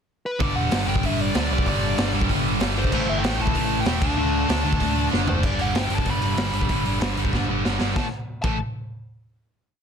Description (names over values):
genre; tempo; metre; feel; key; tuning
punk rock; 191 BPM; 4/4; straight; unclear; A4 = 437 Hz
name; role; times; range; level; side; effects
dark smooth lead guitar; melody; 0.3-8.6 s; B4 to B5; -29 LUFS; left 2 dB; overdrive
biting overdriven guitar; riff; 0.4-8.6 s; G2 to D4; -28 LUFS; left 12 dB; none
distorted electric guitar; riff; 0.4-8.6 s; G2 to D4; -27 LUFS; right 14 dB; distortion
distorted electric guitar; riff; 0.4-5.3 s; G2 to D4; -31 LUFS; right 1 dB; overdrive
overdriven picked electric bass; bass; 0.4-8.6 s; E1 to D2; -27 LUFS; equal; none
raw garage drum kit; drums; 0.4-8.5 s; crash cymbal, hi-hat, kick drum, snare drum, toms; -25 LUFS; equal; none
room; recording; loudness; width
little or no reverb; dense, heavily limited modern master; -20 LUFS; side -7 dB against mid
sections
0.0-0.4 pickup bar; 0.4-5.4 riff; 5.4-8.0 outro; 8.0-9.2 final chord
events
drum fill 5.1-5.4, 7.3-8.0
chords
0.4 G5; 2.9 A5; 4.0 D; 5.4 G; 8.0 A5